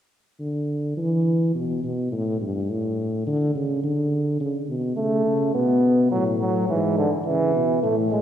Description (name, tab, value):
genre	classical, imitative canzona for brass ensemble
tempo	105 BPM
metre	4/4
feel	straight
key	unclear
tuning	A4 = 442 Hz
part	warm tuba	bass	0.4-8.2 s	G2 to E3	-23 LUFS	equal	none
part	warm euphonium	accompaniment	5.0-8.2 s	D3 to B3	-20 LUFS	right 1 dB	none
room	wet concert hall reverb, RT60 2.3 s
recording	heard from further back in the room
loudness	-20 LUFS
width	side -10 dB against mid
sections	0.0-8.2 A section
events	none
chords	0.0 N.C.; 1.0 E5; 2.1 Gsus2; 3.3 N.C.; 4.4 A; 5.5 B5; 6.7 E/G#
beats	0.40 0.97 1.55 | 2.12 2.70 3.27 3.84 | 4.41 4.97 5.55 6.12 | 6.69 7.26 7.83